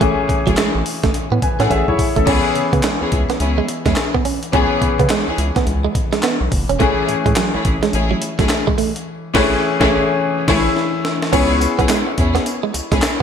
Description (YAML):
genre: R&B, new jack swing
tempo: 106 BPM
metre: 4/4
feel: swing 62% on 16ths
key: C# minor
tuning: A4 = 440 Hz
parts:
  - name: clear concert grand piano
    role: accompaniment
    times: 0.0-13.2 s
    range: E3 to G#5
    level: -20 LUFS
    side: left 4 dB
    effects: wide subtle chorus
  - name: direct-recorded clean electric guitar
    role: riff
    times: 0.0-13.2 s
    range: F#3 to C#4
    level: -22 LUFS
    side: right 8 dB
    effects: lush chorus
  - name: round analog bass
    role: bass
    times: 0.0-13.0 s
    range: E1 to C#3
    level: -20 LUFS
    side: equal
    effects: none
  - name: breakbeat sampler-style drum kit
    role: drums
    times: 0.0-13.2 s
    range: crash cymbal, handclaps, hi-hat, kick drum, snare drum, tambourine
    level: -20 LUFS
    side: equal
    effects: gated reverb
  - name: warm symphonic string section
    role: stabs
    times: 0.5-13.2 s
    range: A3 to G#4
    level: -23 LUFS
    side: left 2 dB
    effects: none
room: moderate plate reverb, RT60 1.7 s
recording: bright 1980s-style digital production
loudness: -15 LUFS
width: side -7 dB against mid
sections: 0.0-2.3 A section; 2.3-11.3 B section; 11.3-13.2 C section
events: drum fill 1.7-2.3, 10.8-11.3; band accent 9.1-11.3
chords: 0.0 Amaj7; 2.3 C#m7; 6.8 Amaj7; 11.3 C#m7